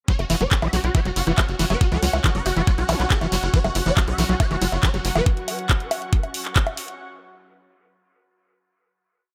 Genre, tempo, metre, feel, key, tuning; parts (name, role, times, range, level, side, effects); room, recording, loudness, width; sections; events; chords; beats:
psychedelic trance; 139 BPM; 4/4; straight; A4 = 440 Hz
swarming rave lead; melody; 0.1-5.2 s; F#4 to E5; -31 LUFS; equal; chorus, phaser, sidechain pumping, dub echo
screaming distorted acid line; riff; 0.1-5.2 s; E3 to F#3; -29 LUFS; equal; distortion, chorus, sidechain pumping
drum and bass drum kit; drums; 0.1-7.0 s; bongos, handclaps, hi-hat; -28 LUFS; equal
electronic kick drum; drums; 0.1-6.6 s; -22 LUFS; equal
shekere; percussion; 0.1-5.2 s; -35 LUFS; equal
muted studio string section; texture; 0.1-7.0 s; C#4 to C#6; -34 LUFS; equal; sidechain pumping
tight sequencer bass; bass; 0.2-5.2 s; F#1 to C#2; -27 LUFS; equal
zap; sound effects; 2.9-3.0 s; -35 LUFS; equal
evolving wavetable pad; sustained chords; 3.9-5.3 s; F#3 to F#4; -38 LUFS; equal
digital ambience; -21 LUFS; mono
0.1-7.0 drop
drop 0.1-7.0
0.1 F#5
| 0.08 0.52 0.95 1.38 | 1.81 2.24 2.67 3.10 | 3.54 3.97 4.40 4.83 | 5.26 5.70 6.13 6.56